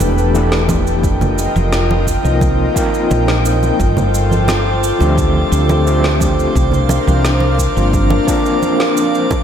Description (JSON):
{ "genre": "sunset chillout", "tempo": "87 BPM", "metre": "4/4", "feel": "straight", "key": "unclear", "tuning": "A4 = 440 Hz", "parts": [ { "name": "overdriven tine electric piano", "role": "accompaniment", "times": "0.0-9.3 s", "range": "E3 to Bb4", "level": "-19 LUFS", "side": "equal", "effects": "medium tremolo, auto-pan, diffuse ambient delay" }, { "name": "airy breathy pad", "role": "sustained chords", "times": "0.0-9.4 s", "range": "D4 to G5", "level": "-18 LUFS", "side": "equal", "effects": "chorus" }, { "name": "woody fretless electric bass", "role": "bass", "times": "0.0-8.2 s", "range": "E1 to D2", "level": "-15 LUFS", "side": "equal", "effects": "wide subtle chorus" }, { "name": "electronic cabasa and snare drum", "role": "drums", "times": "0.0-9.4 s", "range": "none", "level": "-24 LUFS", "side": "right 1 dB", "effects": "none" }, { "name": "congas", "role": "percussion", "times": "0.0-9.4 s", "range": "none", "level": "-24 LUFS", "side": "right 2 dB", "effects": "none" }, { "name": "electronic kick drum", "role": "drums", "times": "0.7-9.4 s", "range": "none", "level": "-19 LUFS", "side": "equal", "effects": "overdrive" }, { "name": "drifting glass-harmonics texture", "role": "texture", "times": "4.2-9.4 s", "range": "D6", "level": "-26 LUFS", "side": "right 2 dB", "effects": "chorus, built-in reverb" } ], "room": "moderate cathedral reverb, RT60 7.0 s", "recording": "dreamy mix soaked in reverb", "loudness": "-12 LUFS", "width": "side -8 dB against mid", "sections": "0.0-9.4 A section", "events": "none", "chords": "0.0 A9sus4; 1.0 F9sus4; 3.8 G9sus4; 6.6 C9sus4" }